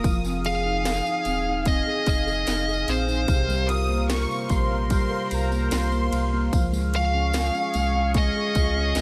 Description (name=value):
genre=pop ballad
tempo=74 BPM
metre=4/4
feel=straight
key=F minor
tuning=A4 = 440 Hz
part: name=warm studio violin section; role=second line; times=0.0-6.7 s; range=Bb5 to Eb6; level=-35 LUFS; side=equal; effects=none
part: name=felt-muted upright piano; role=accompaniment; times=0.0-9.0 s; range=C3 to Bb4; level=-31 LUFS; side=equal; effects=none
part: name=sweeping resonant pad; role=sustained chords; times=0.0-9.0 s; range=Ab4 to Eb6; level=-34 LUFS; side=equal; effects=chorus
part: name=sub bass with octave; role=bass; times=0.0-9.0 s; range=Eb1 to Db2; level=-29 LUFS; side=equal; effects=none
part: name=house drum kit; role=drums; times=0.0-9.0 s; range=kick drum, ride cymbal, snare drum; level=-30 LUFS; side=equal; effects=none
part: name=tambourine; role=percussion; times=0.1-9.0 s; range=none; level=-43 LUFS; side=equal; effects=none
part: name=fuzz lead guitar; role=melody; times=0.5-9.0 s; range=C5 to F5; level=-28 LUFS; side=equal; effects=distortion
room=light reverb, small room ambience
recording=lossy compression artefacts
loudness=-24 LUFS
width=mono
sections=0.0-9.0 A section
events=none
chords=0.0 Fm7; 3.3 C7sus4; 6.5 Db